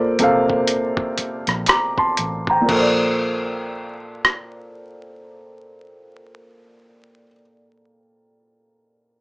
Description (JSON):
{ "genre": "R&B, neo-soul", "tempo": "58-63 BPM", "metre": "4/4", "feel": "swing 60% on 16ths", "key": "Bb major", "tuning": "A4 = 440 Hz", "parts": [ { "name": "dark grand piano", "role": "accompaniment", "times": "0.0-9.2 s", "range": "Bb2 to D6", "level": "-19 LUFS", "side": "equal", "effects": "none" }, { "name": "vintage muted fingered electric bass", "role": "bass", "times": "0.0-7.3 s", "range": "A1 to Bb1", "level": "-31 LUFS", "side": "equal", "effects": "none" }, { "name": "dusty soul sampler-style drum kit", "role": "drums", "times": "0.2-4.5 s", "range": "crash cymbal, hi-hat, kick drum, rim click", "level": "-21 LUFS", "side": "equal", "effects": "none" } ], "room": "moderate studio reverb, RT60 0.6 s", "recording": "vinyl crackle, small speaker sound", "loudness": "-17 LUFS", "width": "side -27 dB against mid", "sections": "0.0-2.7 A section; 2.7-6.8 B section", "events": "slowing down 0.0-2.7", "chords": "0.0 Bbmaj9" }